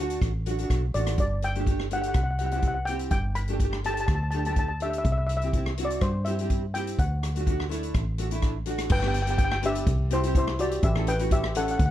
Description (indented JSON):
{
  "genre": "calypso",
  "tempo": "124 BPM",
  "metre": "4/4",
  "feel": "straight",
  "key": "G major",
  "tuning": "A4 = 439 Hz",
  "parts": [
    { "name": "steel pan", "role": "melody", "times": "0.0-11.9 s", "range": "E4 to B5", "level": "-29 LUFS", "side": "left 2 dB", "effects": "none" },
    { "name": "nylon-string guitar", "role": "accompaniment", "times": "0.0-11.8 s", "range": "A3 to A4", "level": "-32 LUFS", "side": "right 2 dB", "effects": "double-tracked left and right" },
    { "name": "fingered electric bass", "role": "bass", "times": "0.0-11.9 s", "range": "G1 to G2", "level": "-28 LUFS", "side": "equal", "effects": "none" },
    { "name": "swinging big-band drum kit", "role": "drums", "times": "0.1-11.9 s", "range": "crash cymbal, hi-hat, kick drum, rim click", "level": "-28 LUFS", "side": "equal", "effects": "none" }
  ],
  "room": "little or no reverb",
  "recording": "none",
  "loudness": "-24 LUFS",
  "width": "side -12 dB against mid",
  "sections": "0.0-8.9 A section; 8.9-11.9 B section",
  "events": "none",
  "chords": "0.0 D6; 1.2 Gsus2; 2.2 C; 3.1 Gsus2; 5.1 C; 7.0 D; 8.9 G; 9.9 C; 10.8 A7",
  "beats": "0.22 0.70 | 1.18 1.67 2.15 2.63 | 3.12 3.60 4.09 4.57 | 5.05 5.54 6.02 6.50 | 6.98 7.47 7.95 8.43 | 8.91 9.39 9.87 10.36 | 10.84 11.32 11.80"
}